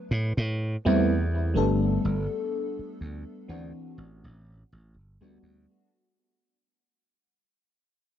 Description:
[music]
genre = vaporwave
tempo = 62 BPM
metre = 4/4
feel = swing 55% on 16ths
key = unclear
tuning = A4 = 439 Hz
[part]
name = slap bass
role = bass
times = 0.1-5.7 s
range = G1 to A2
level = -27 LUFS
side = right 1 dB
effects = none
[part]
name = FM electric piano with soft pad layer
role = accompaniment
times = 0.8-5.9 s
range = E3 to A4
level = -26 LUFS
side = equal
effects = phaser, wide subtle chorus, analog delay
[sound]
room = light reverb, digital ambience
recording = dark, warm production, cassette tape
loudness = -23 LUFS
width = side -10 dB against mid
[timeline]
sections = 0.0-5.9 A section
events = fade-out 0.0-5.9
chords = 0.0 Am7; 2.0 G; 3.5 D7; 4.9 Gmaj9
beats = 0.11 1.08 | 2.04 3.01 3.98 4.95

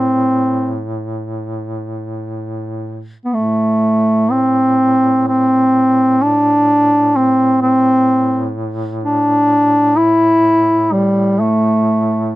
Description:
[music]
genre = caucasian folk, Caucasian lament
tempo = free time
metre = none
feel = none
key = A minor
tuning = A4 = 440 Hz
[part]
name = mellow duduk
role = melody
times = 0.0-12.4 s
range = G3 to E4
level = -11 LUFS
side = equal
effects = none
[part]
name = warm duduk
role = drone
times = 0.0-12.4 s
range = A2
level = -23 LUFS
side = equal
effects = stereo widening
[sound]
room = little or no reverb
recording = dry, close 1970s-style studio recording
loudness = -11 LUFS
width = side -17 dB against mid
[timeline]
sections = 0.0-12.4 A section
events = none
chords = none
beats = free time

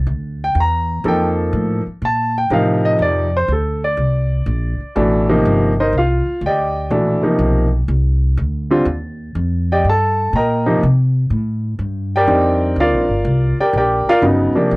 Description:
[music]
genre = modal jazz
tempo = 123 BPM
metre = 4/4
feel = swing 68% on 8ths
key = G minor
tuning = A4 = 439 Hz
[part]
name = upright bass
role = bass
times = 0.0-14.8 s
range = G1 to C3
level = -18 LUFS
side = equal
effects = none
[part]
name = warm grand piano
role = accompaniment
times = 0.4-14.8 s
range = B2 to Bb5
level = -15 LUFS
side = equal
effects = none
[sound]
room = light reverb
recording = dry, close 1970s-style studio recording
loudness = -14 LUFS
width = side -25 dB against mid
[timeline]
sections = 0.0-14.8 A section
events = none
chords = 0.0 Gm9 (rootless); 4.0 Cm9; 11.8 Gm7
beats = | 0.07 0.56 1.04 1.53 | 2.02 2.51 3.00 3.49 | 3.97 4.46 4.95 5.44 | 5.93 6.42 6.90 7.39 | 7.88 8.37 8.86 9.35 | 9.83 10.32 10.81 11.30 | 11.78 12.27 12.76 13.25 | 13.73 14.22 14.71

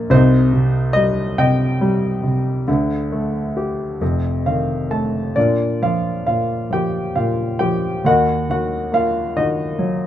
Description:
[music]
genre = classical, lyrical solo piano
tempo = 45 BPM (dotted quarters)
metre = 6/8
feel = rubato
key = Bb major from 5.4 s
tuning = A4 = 436 Hz
[part]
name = dark grand piano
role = solo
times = 0.0-10.1 s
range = F1 to A5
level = -16 LUFS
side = equal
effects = none
[sound]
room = wet booth ambience, RT60 0.2 s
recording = heard from further back in the room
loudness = -16 LUFS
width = side -11 dB against mid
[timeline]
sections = 0.0-5.4 A section; 5.4-10.1 B section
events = grand piano fill 4.0-5.4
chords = 0.1 Cm; 2.7 Dsus4; 4.0 F7; 5.4 Bb; 8.0 Ebm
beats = | 0.11 1.38 | 2.68 4.01 | 5.36 6.70 | 8.04 9.36

